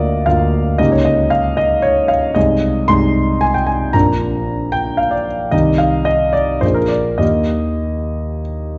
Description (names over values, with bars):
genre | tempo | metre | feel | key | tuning
classical, romantic character piece for solo piano | 97-117 BPM | 3/4 | rubato | Eb major | A4 = 439 Hz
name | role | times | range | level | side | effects
warm concert grand piano | solo | 0.0-8.8 s | Bb1 to C6 | -16 LUFS | equal | none
room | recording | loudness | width
moderate recital hall reverb, RT60 1.4 s | dark, warm production, nothing above 7.6 kHz | -16 LUFS | mono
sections
0.0-8.8 A section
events
none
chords
0.0 Bb/D; 0.8 Eb7/Db; 2.4 Ab/C; 3.9 Bb; 5.5 Cm; 6.6 Bb7; 7.2 Eb